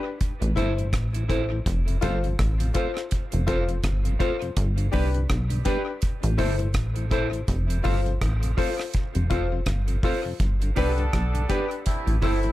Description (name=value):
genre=roots reggae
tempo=82 BPM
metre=4/4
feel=swing 58% on 16ths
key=unclear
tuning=A4 = 439 Hz
part: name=clear upright piano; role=stabs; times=0.0-12.5 s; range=D4 to C5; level=-30 LUFS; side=left 7 dB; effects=none
part: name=deep reggae drum kit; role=drums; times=0.2-12.5 s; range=hi-hat, kick drum, rim click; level=-28 LUFS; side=equal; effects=dub echo
part: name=mellow tonewheel organ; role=accompaniment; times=0.4-12.5 s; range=F2 to F4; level=-35 LUFS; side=left 1 dB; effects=slow rotary speaker, tube saturation, dub echo
part: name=plucky analog bass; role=bass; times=0.4-12.5 s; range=F1 to C2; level=-24 LUFS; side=equal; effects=none
part: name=clean electric guitar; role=accompaniment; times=0.6-12.5 s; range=D4 to C5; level=-33 LUFS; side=right 7 dB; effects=dub echo
part: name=warm horn section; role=second line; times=10.8-12.5 s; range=A3 to A4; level=-32 LUFS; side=right 1 dB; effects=dub echo
room=small room ambience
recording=echo-heavy mix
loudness=-22 LUFS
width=side -15 dB against mid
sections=0.0-12.5 A section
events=none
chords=0.2 Am; 1.7 F; 4.6 G; 6.0 Am; 7.5 F; 10.4 G; 11.9 Am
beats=0.20 0.93 | 1.66 2.39 3.11 3.84 | 4.57 5.30 6.03 6.76 | 7.48 8.21 8.94 9.67 | 10.40 11.13 11.86